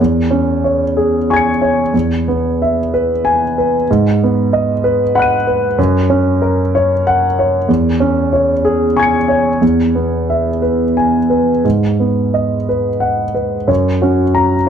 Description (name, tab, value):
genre	neoclassical minimalist piano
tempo	62 BPM (dotted quarters)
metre	6/8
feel	rubato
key	G# minor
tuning	A4 = 440 Hz
part	warm concert grand piano	solo	0.0-14.7 s	E2 to D#7	-12 LUFS	equal	none
room	moderate stone room reverb, RT60 1.2 s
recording	dark, warm production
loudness	-12 LUFS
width	side -8 dB against mid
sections	0.0-13.7 A section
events	none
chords	0.0 C#m/E; 1.9 E; 3.9 G#m7; 5.8 F#; 7.7 C#m/E; 9.6 E; 11.6 G#m7; 13.7 F#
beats	0.96 | 1.94 2.90 | 3.87 4.83 | 5.78 6.73 | 7.68 8.65 | 9.62 10.62 | 11.64 12.67 | 13.69 14.68